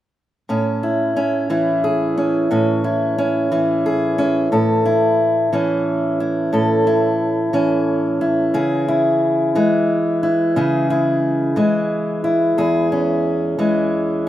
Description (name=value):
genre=folk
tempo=60 BPM (dotted quarters)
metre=6/8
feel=straight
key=unclear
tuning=A4 = 445 Hz
part: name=fingerpicked steel-string acoustic guitar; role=accompaniment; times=0.5-14.3 s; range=E2 to A4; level=-16 LUFS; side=equal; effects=none
room=light reverb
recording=rough home demo mix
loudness=-16 LUFS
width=side -13 dB against mid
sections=0.5-4.5 A section; 4.5-14.3 B section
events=none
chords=0.5 A; 8.5 C#m; 12.6 E6